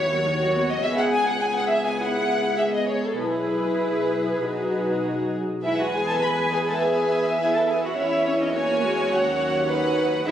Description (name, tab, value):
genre	quick classical-period movement for string orchestra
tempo	96-106 BPM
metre	4/4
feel	rubato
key	E major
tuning	A4 = 441 Hz
part	warm chamber violin section	melody	0.0-10.3 s	A4 to B5	-28 LUFS	left 2 dB	none
part	warm chamber violin section	second line	0.0-10.3 s	A4 to G#5	-25 LUFS	right 1 dB	none
part	warm chamber viola section	accompaniment	0.0-10.3 s	D#3 to G#4	-26 LUFS	left 1 dB	none
part	clear chamber double bass section	bass	0.0-10.3 s	B1 to E2	-31 LUFS	right 1 dB	none
part	warm studio cello section	bass	0.0-10.3 s	C#4 to B4	-30 LUFS	right 1 dB	none
room	moderate scoring stage reverb, RT60 1.9 s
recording	recorded on a phone in the room, club reverb, compression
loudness	-20 LUFS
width	side -10 dB against mid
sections	0.0-5.6 A section; 5.6-10.3 A section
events	none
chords	0.0 B/D#; 0.8 C#m7; 3.2 E/B; 4.4 B; 5.6 E; 8.0 F#7/E; 9.1 B/D#